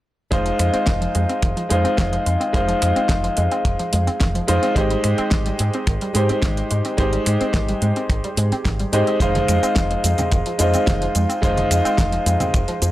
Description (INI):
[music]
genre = nu-disco, nu disco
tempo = 108 BPM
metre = 4/4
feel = straight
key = F minor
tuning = A4 = 440 Hz
[part]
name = warm grand piano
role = accompaniment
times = 0.3-12.9 s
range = Ab3 to C5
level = -21 LUFS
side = equal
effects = tape echo
[part]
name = analog pluck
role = arpeggios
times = 0.3-12.9 s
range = Eb3 to C4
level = -28 LUFS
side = right 1 dB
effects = chorus, sidechain pumping, tape echo
[part]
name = fingered electric bass with an envelope filter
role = bass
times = 0.3-12.9 s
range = F1 to Ab2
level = -21 LUFS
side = equal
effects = tube saturation
[part]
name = kick drum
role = drums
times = 0.3-12.7 s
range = none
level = -21 LUFS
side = equal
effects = none
[part]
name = pop drum kit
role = drums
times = 0.3-12.9 s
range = finger snaps, hi-hat, shaker, snare drum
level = -26 LUFS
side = equal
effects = none
[part]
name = congas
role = percussion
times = 9.4-12.5 s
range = none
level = -27 LUFS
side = right 1 dB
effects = none
[sound]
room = small room ambience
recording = dry, gritty hardware recording, transformer saturation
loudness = -17 LUFS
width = side -15 dB against mid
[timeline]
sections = 0.3-12.9 A section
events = none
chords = 0.3 Fm7; 4.8 Abmaj7; 9.2 Fm7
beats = | 0.32 0.88 1.43 1.99 | 2.54 3.10 3.65 4.21 | 4.76 5.32 5.88 6.43 | 6.99 7.54 8.10 8.65 | 9.21 9.77 10.32 10.88 | 11.43 11.99 12.54